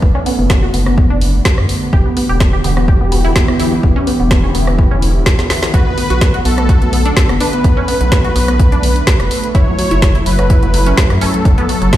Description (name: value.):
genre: progressive house.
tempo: 126 BPM.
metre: 4/4.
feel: straight.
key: B minor.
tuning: A4 = 440 Hz.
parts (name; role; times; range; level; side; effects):
lush unison pad; sustained chords; 0.0-12.0 s; D3 to G4; -21 LUFS; equal; chorus, phaser, sidechain pumping.
wide unison pluck; arpeggios; 0.0-12.0 s; F#3 to G4; -19 LUFS; equal; phaser, cassette tape, sidechain pumping, dub echo.
round analog bass; bass; 0.0-12.0 s; E1 to F#2; -15 LUFS; equal; sidechain pumping.
electronic kick drum; drums; 0.0-12.0 s; none; -12 LUFS; equal; none.
deep house drum kit; drums; 0.3-12.0 s; hi-hat, rim click, snare drum; -19 LUFS; equal; sidechain pumping on hats.
soft supersaw; melody; 5.7-12.0 s; A4 to C#5; -20 LUFS; equal; sidechain pumping, dub echo.
room: light reverb.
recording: played on a big sound system in a bare room, large studio reverb.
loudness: -10 LUFS.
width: side -13 dB against mid.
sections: 0.0-12.0 A section.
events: filter sweep on synth pluck 0.0-12.0; filter sweep on analog synth pad 0.0-12.0; drum fill 5.4-5.7.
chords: 0.0 Bm7/F#; 1.9 Em7; 5.7 Bm7; 9.5 F#m7.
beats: | 0.02 0.50 0.98 1.45 | 1.93 2.40 2.88 3.36 | 3.83 4.31 4.79 5.26 | 5.74 6.21 6.69 7.17 | 7.64 8.12 8.60 9.07 | 9.55 10.02 10.50 10.98 | 11.45 11.93.